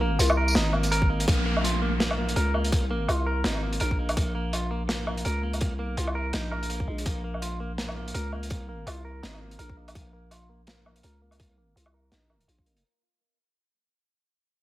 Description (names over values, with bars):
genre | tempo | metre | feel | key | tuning
half-time drum and bass | 166 BPM | 4/4 | swing 57% on 16ths, half-time | Bb minor | A4 = 441 Hz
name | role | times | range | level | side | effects
dark analog pad | sustained chords | 0.0-1.3 s | Bb3 to Bb4 | -38 LUFS | left 6 dB | none
clean electric guitar | arpeggios | 0.0-12.8 s | Ab3 to Bb4 | -32 LUFS | right 1 dB | vintage 12-bit sampler grit, low-pass filter, digital delay
growling 808-style bass | bass | 0.0-12.8 s | Ab1 to Db2 | -28 LUFS | equal | none
crunchy breakbeat drum kit | drums | 0.2-12.8 s | hi-hat, snare drum, tambourine, woodblock | -30 LUFS | equal | none
electronic kick drum | drums | 1.0-12.6 s | none | -26 LUFS | equal | none
downlifter | sound effects | 1.3-4.2 s | none | -34 LUFS | left 2 dB | none
room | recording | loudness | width
light reverb | none | -24 LUFS | side -15 dB against mid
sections
0.0-1.3 A section; 1.3-12.8 B section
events
drop 0.0-1.3; fade-out 1.3-12.8; filter sweep on clean electric guitar 1.3-12.8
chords
0.0 Bb5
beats
0.19 0.55 0.92 | 1.28 1.64 2.00 2.36 | 2.72 3.08 3.45 3.81 | 4.17 4.53 4.89 5.25 | 5.61 5.98 6.34 6.70 | 7.06 7.42 7.78 8.14 | 8.51 8.87 9.23 9.59 | 9.95 10.31 10.68 11.04 | 11.40 11.76 12.12 12.48